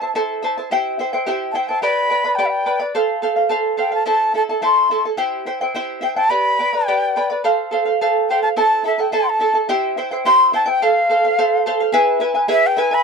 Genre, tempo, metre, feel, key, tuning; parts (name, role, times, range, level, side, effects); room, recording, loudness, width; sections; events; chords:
andean folk; 107 BPM; 2/4; straight; A4 = 437 Hz
large quena; melody; 0.0-13.0 s; E5 to C6; -16 LUFS; left 1 dB
charango; accompaniment; 0.0-13.0 s; E4 to B5; -18 LUFS; right 1 dB
light reverb; dry, close 1970s-style studio recording; -15 LUFS; side -5 dB against mid
0.7-9.7 A section; 9.7-13.0 B section
0.0 Am; 0.7 C; 1.8 G; 3.0 F; 4.1 Am; 5.2 C; 6.3 G; 7.4 F; 8.6 Am; 9.7 C; 10.8 F; 11.9 E